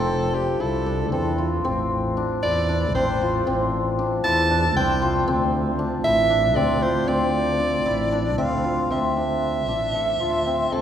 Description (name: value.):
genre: contemporary instrumental, chamber music in an uneven meter.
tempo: 231 BPM (eighths).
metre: 7/8.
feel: straight.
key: D minor.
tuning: A4 = 440 Hz.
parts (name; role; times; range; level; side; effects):
warm soprano saxophone; melody; 0.0-10.8 s; G4 to A5; -23 LUFS; right 1 dB; none.
hammered dulcimer; arpeggios; 0.0-10.8 s; C4 to A4; -24 LUFS; left 2 dB; none.
dark double bass; bass; 0.0-10.8 s; F1 to E2; -25 LUFS; equal; none.
room: wet concert hall reverb, RT60 2.3 s.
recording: heard from further back in the room.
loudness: -20 LUFS.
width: side -9 dB against mid.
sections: 0.0-8.9 A section; 8.9-10.8 B section.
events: none.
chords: 0.0 F6; 1.6 Dm9; 8.9 Dm7.